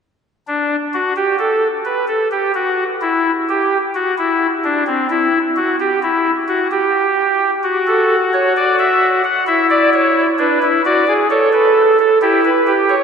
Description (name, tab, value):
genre	classical, baroque-style 4-part fugue for pipe organ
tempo	65 BPM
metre	4/4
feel	straight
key	unclear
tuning	A4 = 440 Hz
part	pipe organ, soft reed	solo	0.5-13.0 s	C4 to F#5	-13 LUFS	equal	none
room	wet cathedral reverb, RT60 4.5 s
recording	recorded in a church or concert hall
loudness	-13 LUFS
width	side -6 dB against mid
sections	0.2-13.0 A section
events	none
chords	0.2 N.C.; 7.6 D/F# (rootless); 9.5 E7(no3); 11.3 A7